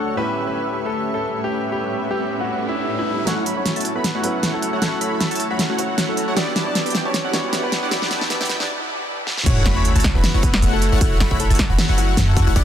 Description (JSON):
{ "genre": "future bass", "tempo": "155 BPM", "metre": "4/4", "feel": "swing 55% on 16ths, half-time", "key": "unclear", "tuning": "A4 = 440 Hz", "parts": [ { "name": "bright grand piano", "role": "melody", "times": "0.0-12.6 s", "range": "F#3 to D5", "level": "-26 LUFS", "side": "left 1 dB", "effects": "sidechain pumping, low-pass filter, ping-pong delay" }, { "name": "felt-muted upright piano", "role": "accompaniment", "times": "0.0-9.5 s", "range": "D2 to C#5", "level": "-30 LUFS", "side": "right 1 dB", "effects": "sidechain pumping, dub echo" }, { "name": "shimmering ambient pad", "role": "sustained chords", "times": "0.0-9.4 s", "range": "D2 to C#5", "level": "-34 LUFS", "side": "equal", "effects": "chorus, built-in reverb, sidechain pumping" }, { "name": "big bright polysynth", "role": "riff", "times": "0.0-12.6 s", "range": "A3 to B5", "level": "-24 LUFS", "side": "left 1 dB", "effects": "chorus, sidechain pumping" }, { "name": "riser and sub drop", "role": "sound effects", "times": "2.0-11.0 s", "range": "none", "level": "-30 LUFS", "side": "right 1 dB", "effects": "none" }, { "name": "warm 808-style bass", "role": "bass", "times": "3.3-12.6 s", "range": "E1 to F#2", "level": "-19 LUFS", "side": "equal", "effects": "sidechain pumping, high-pass filter" }, { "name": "big-room dance drum kit", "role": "drums", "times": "3.3-12.6 s", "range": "crash cymbal, hi-hat, snare drum", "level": "-23 LUFS", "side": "equal", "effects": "soft clipping on snare" }, { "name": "electronic kick drum", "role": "drums", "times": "9.5-12.6 s", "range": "none", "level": "-20 LUFS", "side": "equal", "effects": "none" } ], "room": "light reverb", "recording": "dense, heavily limited modern master, high-pass filter", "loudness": "-18 LUFS", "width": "side -10 dB against mid", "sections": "0.0-3.3 A section; 3.3-9.5 B section; 9.5-12.6 C section", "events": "riser 2.0-3.3; build-up 3.3-9.5; drum fill 3.3-8.7, 9.3; filter sweep on analog polysynth 3.3-9.5; filter sweep on grand piano 3.3-9.5; filter sweep 3.3-9.5; break 8.7-9.5; drop 9.5-12.6; impact 9.5-11.0", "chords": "0.2 A9; 3.3 F#m7; 6.4 Em9; 9.5 F#m7", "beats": "| 0.17 0.56 0.95 1.33 | 1.72 2.11 2.50 2.88 | 3.27 3.66 4.04 4.43 | 4.82 5.21 5.59 5.98 | 6.37 6.75 7.14 7.53 | 7.91 8.30 8.69 9.08 | 9.46 9.85 10.24 10.62 | 11.01 11.40 11.79 12.17 | 12.56" }